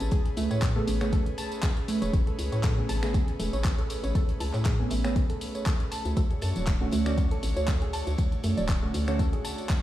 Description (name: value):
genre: deep house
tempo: 119 BPM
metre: 4/4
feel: swing 54% on 16ths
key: A major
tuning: A4 = 440 Hz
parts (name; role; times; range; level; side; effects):
- airy breathy pad; sustained chords; 0.0-9.8 s; A3 to C#5; -36 LUFS; right 1 dB; chorus, sidechain pumping
- hollow knocking FM bass; bass; 0.0-9.4 s; D1 to A2; -30 LUFS; equal; none
- deep house drum kit; drums; 0.0-9.8 s; finger snaps, handclaps, hi-hat, tambourine; -37 LUFS; equal; none
- warbly dusty pluck; arpeggios; 0.1-9.5 s; A3 to A5; -34 LUFS; right 3 dB; chorus, sidechain pumping, ping-pong delay
- compact cocktail drum kit; drums; 0.1-9.8 s; hi-hat, snare drum; -50 LUFS; left 4 dB; none
- electronic kick drum; drums; 0.1-9.8 s; none; -26 LUFS; equal; none
- deep mellow chord stab; stabs; 0.8-9.2 s; C#3 to G#4; -33 LUFS; right 1 dB; wide subtle chorus, cassette tape, sidechain pumping, ping-pong delay
room: little or no reverb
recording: played on a big sound system in a bare room, stone room reverb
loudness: -25 LUFS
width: side -14 dB against mid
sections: 0.0-9.8 A section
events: none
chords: 0.0 Amaj9; 5.9 Dmaj7